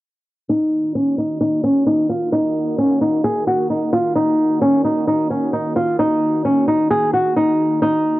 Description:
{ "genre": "hip hop", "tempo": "131 BPM", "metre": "4/4", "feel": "half-time", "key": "Eb minor", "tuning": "A4 = 440 Hz", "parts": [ { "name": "flamenco guitar", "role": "melody", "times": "0.5-8.2 s", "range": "Db4 to Ab4", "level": "-16 LUFS", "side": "equal", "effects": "low-pass filter" }, { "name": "sweeping resonant pad", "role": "sustained chords", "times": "0.5-8.2 s", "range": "Eb3 to Gb4", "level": "-26 LUFS", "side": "right 1 dB", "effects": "wide subtle chorus, low-pass filter" } ], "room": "light reverb", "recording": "dry, gritty hardware recording, cassette tape", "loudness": "-15 LUFS", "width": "side -17 dB against mid", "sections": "0.5-8.2 A section", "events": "filter sweep 0.5-8.2", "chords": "0.5 Ebm", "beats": "| 0.49 0.95 1.41 1.87 | 2.33 2.78 3.24 3.70 | 4.16 4.62 5.07 5.53 | 5.99 6.45 6.91 7.36 | 7.82" }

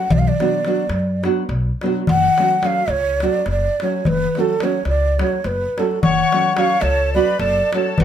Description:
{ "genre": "balkan folk, Balkan wedding band", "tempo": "213 BPM (eighths)", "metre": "7/8", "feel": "straight", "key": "F# harmonic minor", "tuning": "A4 = 443 Hz", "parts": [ { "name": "breathy ney", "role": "melody", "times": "0.0-8.0 s", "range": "A4 to F#5", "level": "-19 LUFS", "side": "right 1 dB", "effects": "none" }, { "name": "nylon-string guitar", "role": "accompaniment", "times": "0.0-7.9 s", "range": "F#3 to F#4", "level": "-21 LUFS", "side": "right 3 dB", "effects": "none" }, { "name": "upright bass", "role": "bass", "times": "0.1-8.0 s", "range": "F#1 to F#2", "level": "-21 LUFS", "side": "left 1 dB", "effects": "none" }, { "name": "darbuka", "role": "percussion", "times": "0.1-8.0 s", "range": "none", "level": "-22 LUFS", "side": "left 2 dB", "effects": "none" }, { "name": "accordion", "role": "second line", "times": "6.0-8.0 s", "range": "F#4 to C#5", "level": "-23 LUFS", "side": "left 6 dB", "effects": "none" } ], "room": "moderate small room reverb, RT60 0.6 s", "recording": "none", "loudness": "-16 LUFS", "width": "side -9 dB against mid", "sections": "0.0-6.0 A section; 6.0-8.0 A section", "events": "none", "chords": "0.1 Bm; 2.1 F#m", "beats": "| 0.11 0.39 0.67 0.95 1.24 1.52 1.80 | 2.08 2.37 2.65 2.93 3.21 3.50 3.78 | 4.06 4.34 4.62 4.90 5.18 5.47 5.75 | 6.03 6.31 6.59 6.87 7.15 7.43 7.71 | 7.99" }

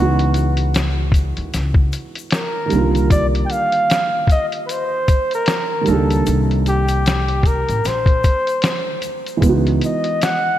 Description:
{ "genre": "lo-fi hip hop", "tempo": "76 BPM", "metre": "4/4", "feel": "swing 60% on 16ths", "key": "unclear", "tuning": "A4 = 438 Hz", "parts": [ { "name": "breathy flugelhorn", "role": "melody", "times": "0.0-10.6 s", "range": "F#4 to G5", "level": "-20 LUFS", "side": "equal", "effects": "low-pass filter, tape echo" }, { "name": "felt-muted upright piano", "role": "accompaniment", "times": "0.0-10.6 s", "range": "D3 to G4", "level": "-22 LUFS", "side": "right 4 dB", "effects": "low-pass filter" }, { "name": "upright bass", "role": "bass", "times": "0.0-9.8 s", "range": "A1 to D#2", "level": "-19 LUFS", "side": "left 1 dB", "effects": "none" }, { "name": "lo-fi sampler-style drum kit", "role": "drums", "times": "0.2-10.4 s", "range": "hi-hat, kick drum, snare drum", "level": "-18 LUFS", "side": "left 1 dB", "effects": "vintage 12-bit sampler grit" }, { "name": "egg shaker", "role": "percussion", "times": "0.4-10.4 s", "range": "none", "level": "-41 LUFS", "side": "left 8 dB", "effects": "none" } ], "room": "moderate lush hall reverb, RT60 2.0 s", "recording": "dreamy mix soaked in reverb", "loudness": "-15 LUFS", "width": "side -12 dB against mid", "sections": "0.0-10.6 A section", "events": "none", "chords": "0.0 C#m11; 2.7 Cm11; 9.4 C#m11", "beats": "0.74 1.53 2.32 | 3.11 3.90 4.68 5.47 | 6.26 7.05 7.84 8.63 | 9.42 10.21" }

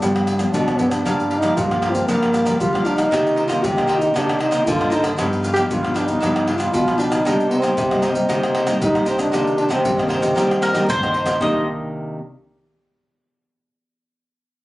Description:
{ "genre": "samba and choro", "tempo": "116 BPM", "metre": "4/4", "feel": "straight", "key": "C minor", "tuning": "A4 = 440 Hz", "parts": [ { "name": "mellow trombone", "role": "melody", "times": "0.0-11.7 s", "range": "G3 to G4", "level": "-20 LUFS", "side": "equal", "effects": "none" }, { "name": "nylon-string guitar", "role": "accompaniment", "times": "0.0-12.2 s", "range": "G2 to Eb4", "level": "-26 LUFS", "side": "left 1 dB", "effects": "none" }, { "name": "nylon-string guitar", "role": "bass", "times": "0.0-11.7 s", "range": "G2 to C4", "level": "-23 LUFS", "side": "equal", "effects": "none" }, { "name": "maracas, surdo, pandeiro and tamborim", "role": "percussion", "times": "0.0-11.5 s", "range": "none", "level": "-26 LUFS", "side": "equal", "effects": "none" }, { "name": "cavaquinho", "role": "accompaniment", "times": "1.1-11.6 s", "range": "D4 to F5", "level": "-26 LUFS", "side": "right 2 dB", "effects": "none" }, { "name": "mandolin", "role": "second line", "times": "10.6-11.7 s", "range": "Bb4 to Eb5", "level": "-21 LUFS", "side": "left 1 dB", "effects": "none" } ], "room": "light reverb", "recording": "recorded on a phone in the room, club reverb, nothing above 10.6 kHz", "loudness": "-16 LUFS", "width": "side -18 dB against mid", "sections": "0.0-9.3 A section; 9.3-11.4 B section; 11.4-13.5 C section", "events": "none", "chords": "0.0 G7; 1.1 Gm7; 3.1 Cm9; 5.2 G7b13; 7.3 Cm7; 9.3 Cm9", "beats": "0.03 0.55 | 1.06 1.57 2.09 2.61 | 3.12 3.64 4.16 4.67 | 5.19 5.71 6.23 6.75 | 7.26 7.78 8.30 8.82 | 9.34 9.86 10.38 10.89 | 11.41 11.93" }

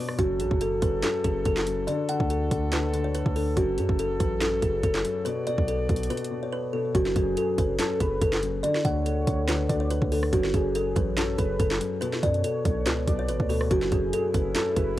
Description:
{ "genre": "hip hop, trap", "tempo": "142 BPM", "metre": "4/4", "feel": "half-time", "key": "F# minor", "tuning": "A4 = 444 Hz", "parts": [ { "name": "dark grand piano", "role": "accompaniment", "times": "0.0-15.0 s", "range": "F#2 to D3", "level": "-32 LUFS", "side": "left 5 dB", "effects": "cassette tape" }, { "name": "warm brass ensemble", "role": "sustained chords", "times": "0.0-6.9, 13.7-15.0 s", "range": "D3 to D5", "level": "-39 LUFS", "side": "equal", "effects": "stereo widening, cassette tape" }, { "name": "trap drum kit", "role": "drums", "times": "0.1-14.9 s", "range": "handclaps, hi-hat, kick drum, rim click, snare drum", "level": "-28 LUFS", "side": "right 1 dB", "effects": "none" }, { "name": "kalimba", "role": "melody", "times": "0.2-14.9 s", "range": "F#4 to F#5", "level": "-27 LUFS", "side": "equal", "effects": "cassette tape" }, { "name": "warm 808-style bass", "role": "bass", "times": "0.2-15.0 s", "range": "F#1 to F#2", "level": "-29 LUFS", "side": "right 1 dB", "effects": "none" }, { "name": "warm velvety synth lead", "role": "second line", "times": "7.2-15.0 s", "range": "G#4 to D5", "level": "-36 LUFS", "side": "right 1 dB", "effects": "chorus, cassette tape, tape echo" } ], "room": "light reverb, small room ambience", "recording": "home recording on cassette", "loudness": "-23 LUFS", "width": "side -14 dB against mid", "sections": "0.0-6.9 A section; 6.9-15.0 B section", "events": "break 0.0, 6.1-6.9", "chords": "0.2 F#m7; 1.9 D; 3.6 F#m7; 5.3 Bmadd9; 6.9 F#madd9; 8.6 D5; 10.3 F#m; 12.0 Bmadd9; 13.7 F#m7", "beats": "| 0.19 0.61 1.03 1.46 | 1.88 2.30 2.72 3.15 | 3.57 3.99 4.41 4.84 | 5.26 5.68 6.10 6.53 | 6.95 7.37 7.79 8.22 | 8.64 9.06 9.48 9.91 | 10.33 10.75 11.17 11.60 | 12.02 12.44 12.86 13.29 | 13.71 14.13 14.55 14.98" }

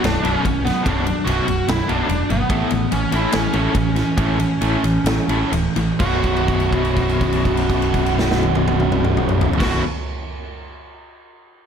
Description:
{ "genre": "hard rock", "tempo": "123-146 BPM", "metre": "4/4", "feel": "straight", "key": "unclear", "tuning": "A4 = 440 Hz", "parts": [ { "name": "cranked stack guitar", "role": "riff", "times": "0.0-9.8 s", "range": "B1 to A3", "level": "-24 LUFS", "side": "left 8 dB", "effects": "overdrive, tremolo" }, { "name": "high-gain distorted guitar", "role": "riff", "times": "0.0-9.8 s", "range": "B1 to A3", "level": "-24 LUFS", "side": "right 11 dB", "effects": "distortion" }, { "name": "modern bright picked electric bass", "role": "bass", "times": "0.0-9.8 s", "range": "B0 to A1", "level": "-23 LUFS", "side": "equal", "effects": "none" }, { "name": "big rock drum kit", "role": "drums", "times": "0.0-9.7 s", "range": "crash cymbal, kick drum, ride cymbal, snare drum, toms", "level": "-23 LUFS", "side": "equal", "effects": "none" }, { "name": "bluesy overdriven lead guitar", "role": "melody", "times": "0.1-9.8 s", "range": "B3 to F#4", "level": "-23 LUFS", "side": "right 2 dB", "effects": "distortion" } ], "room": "moderate large studio reverb, RT60 1.3 s, small room ambience", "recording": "none", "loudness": "-16 LUFS", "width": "side -7 dB against mid", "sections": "0.0-6.0 A section; 6.0-9.9 B section", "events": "slowing down 2.5-6.0; held note 6.0-9.6", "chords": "0.0 Bm; 2.5 A; 6.0 B5", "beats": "0.04 0.45 | 0.86 1.27 1.68 2.09 | 2.50 2.91 3.32 3.75 | 4.17 4.61 5.06 5.52 | 6.00 6.49 6.97 7.46 | 7.94 8.43 8.92 9.40" }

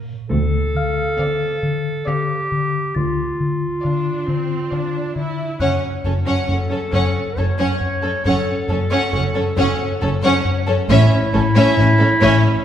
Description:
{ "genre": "cinematic, suspense film score", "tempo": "68 BPM", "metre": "3/4", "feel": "straight", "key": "unclear", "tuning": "A4 = 438 Hz", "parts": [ { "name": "rich studio violin section", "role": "melody", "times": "0.0-12.4 s", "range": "Db5 to Gb5", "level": "-25 LUFS", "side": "left 3 dB", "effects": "none" }, { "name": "rich studio violin section", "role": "second line", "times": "0.0-12.4 s", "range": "A4 to D5", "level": "-25 LUFS", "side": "left 3 dB", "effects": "none" }, { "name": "bright studio viola section", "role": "accompaniment", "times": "0.0-12.4 s", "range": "C4 to E4", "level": "-23 LUFS", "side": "right 2 dB", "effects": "none" }, { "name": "round analog bass", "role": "riff", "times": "0.0-12.5 s", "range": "Gb2 to D3", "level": "-21 LUFS", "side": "left 2 dB", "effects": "none" }, { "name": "celesta", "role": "texture", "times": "0.0-10.9 s", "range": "F5 to Eb7", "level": "-32 LUFS", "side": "left 4 dB", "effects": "none" }, { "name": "bright clarinet", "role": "second line", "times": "0.3-12.6 s", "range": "E4 to Db5", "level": "-22 LUFS", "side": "right 1 dB", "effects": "none" }, { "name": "clear studio double bass section", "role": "bass", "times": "0.3-12.3 s", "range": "Gb1 to D2", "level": "-26 LUFS", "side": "right 2 dB", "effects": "none" }, { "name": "warm studio cello section", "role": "bass", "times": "0.3-12.3 s", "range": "D2 to A2", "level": "-24 LUFS", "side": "right 1 dB", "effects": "none" } ], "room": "wet scoring stage reverb, RT60 1.9 s", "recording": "heard from further back in the room", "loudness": "-16 LUFS", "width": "side -10 dB against mid", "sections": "0.0-12.6 A section", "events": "none", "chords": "0.3 Dm7; 5.6 Gbm; 10.9 A", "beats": "| 0.31 1.19 2.07 | 2.95 3.83 4.72 | 5.60 6.48 7.36 | 8.25 9.13 10.01 | 10.89 11.78" }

